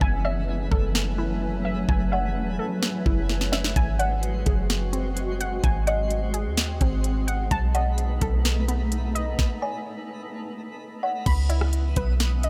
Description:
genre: hip hop, atmospheric cloud-rap.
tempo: 128 BPM.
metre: 4/4.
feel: half-time.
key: C# minor.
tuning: A4 = 441 Hz.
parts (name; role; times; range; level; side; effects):
granular cloud pad; sustained chords; 0.0-12.5 s; C#3 to G#5; -34 LUFS; equal; built-in reverb, sidechain pumping.
warbly dusty pluck; arpeggios; 0.0-12.5 s; B3 to B5; -35 LUFS; equal; chorus, low-pass filter, tape echo.
soft 808-style bass; bass; 0.0-12.5 s; E1 to D#2; -27 LUFS; equal; none.
trap drum kit; drums; 0.0-12.5 s; crash cymbal, hi-hat, kick drum, rim click, snare drum; -28 LUFS; equal; none.
twinkling granular texture; texture; 0.0-12.5 s; G#3 to D#6; -41 LUFS; equal; built-in reverb.
kalimba; melody; 0.2-12.5 s; D#5 to G#5; -33 LUFS; equal; low-pass filter, tape echo.
room: light reverb.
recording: none.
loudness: -25 LUFS.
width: mono.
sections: 0.0-11.3 A section; 11.3-12.5 B section.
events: break 0.0-3.8; drum fill 3.3-3.8; stop 9.4-11.3.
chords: 0.0 F#m11; 3.8 G#7; 7.5 B7; 11.3 C#m9.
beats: | 0.01 0.48 0.95 1.42 | 1.89 2.36 2.83 3.29 | 3.76 4.23 4.70 5.17 | 5.64 6.11 6.58 7.04 | 7.51 7.98 8.45 8.92 | 9.39 9.86 10.32 10.79 | 11.26 11.73 12.20.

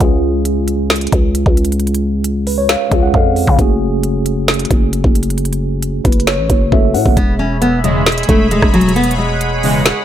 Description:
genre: hip hop, trap.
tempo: 134 BPM.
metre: 4/4.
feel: half-time.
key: F# minor.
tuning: A4 = 438 Hz.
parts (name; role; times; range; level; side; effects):
mellow tine electric piano; accompaniment; 0.0-7.2 s; G#3 to F#5; -18 LUFS; equal; medium stereo tremolo.
growling 808-style bass; bass; 0.0-9.9 s; E1 to C#3; -17 LUFS; equal; none.
trap drum kit; drums; 0.0-10.0 s; hi-hat, kick drum, rim click, snare drum; -14 LUFS; equal; none.
nylon-string guitar; melody; 7.2-10.0 s; F#3 to C#4; -15 LUFS; left 1 dB; ping-pong delay.
sweeping resonant pad; sustained chords; 7.2-10.0 s; G#4 to B5; -20 LUFS; right 1 dB; chorus.
analog synth brass; stabs; 7.8-9.8 s; E2 to G#3; -16 LUFS; equal; chorus.
room: little or no reverb.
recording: none.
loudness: -11 LUFS.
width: side -11 dB against mid.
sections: 0.0-7.2 A section; 7.2-10.0 B section.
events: none.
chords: 0.0 C#; 3.6 F#madd9; 7.2 E6.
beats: | 0.01 0.45 0.90 1.35 | 1.80 2.24 2.69 3.14 | 3.59 4.04 4.48 4.93 | 5.38 5.83 6.27 6.72 | 7.17 7.62 8.06 8.51 | 8.96 9.41 9.86.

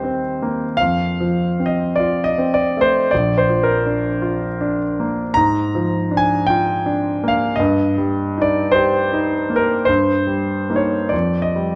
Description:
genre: classical, romantic nocturne for solo piano.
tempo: 44-54 BPM.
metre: 4/4.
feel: rubato.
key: Bb major.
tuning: A4 = 441 Hz.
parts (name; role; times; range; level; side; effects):
warm grand piano; solo; 0.0-11.8 s; Bb1 to Bb5; -18 LUFS; equal; none.
room: moderate recital hall reverb, RT60 1.4 s.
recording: none.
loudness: -18 LUFS.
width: mono.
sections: 0.0-11.8 A section.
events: none.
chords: 0.0 Cm7/Eb; 0.8 F; 3.1 Bb; 5.4 Bb7/Ab; 7.6 Eb/G; 11.1 F7sus2.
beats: | 0.79 1.97 3.11 4.23 | 5.36 6.47 7.59 8.73 | 9.88 11.13.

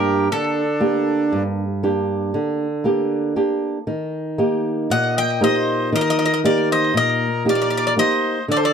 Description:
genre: greek folk, Greek bouzouki band.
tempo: 118 BPM (eighths).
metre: 9/8.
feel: straight.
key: unclear.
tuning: A4 = 444 Hz.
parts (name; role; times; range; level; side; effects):
Greek bouzouki; melody; 0.0-8.7 s; A4 to G5; -21 LUFS; left 2 dB; slapback echo.
accordion; second line; 0.0-8.7 s; D4 to Eb5; -24 LUFS; equal; none.
flamenco guitar; accompaniment; 0.0-8.7 s; G2 to G4; -19 LUFS; right 1 dB; none.
room: light reverb.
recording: dry, close 1970s-style studio recording.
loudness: -17 LUFS.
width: side -7 dB against mid.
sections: 0.0-8.7 A section.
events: none.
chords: 0.0 Gm; 3.9 Eb.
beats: 0.31 0.82 1.33 1.84 2.35 2.87 3.38 | 3.89 4.40 4.91 5.42 5.93 6.44 6.95 7.46 7.97 | 8.48.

